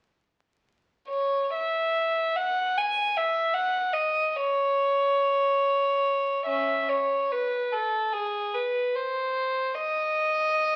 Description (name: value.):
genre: classical, free, expressive piece for unaccompanied violin.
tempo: 37-77 BPM.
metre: 3/4.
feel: rubato.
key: C# minor.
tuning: A4 = 440 Hz.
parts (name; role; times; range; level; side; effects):
warm violin; solo; 1.1-10.8 s; C#4 to G#5; -26 LUFS; equal; none.
room: moderate large studio reverb, RT60 0.9 s.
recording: very old 78 rpm record, vinyl crackle.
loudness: -26 LUFS.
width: mono.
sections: 1.1-6.4 A section; 6.4-10.8 B section.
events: none.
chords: none.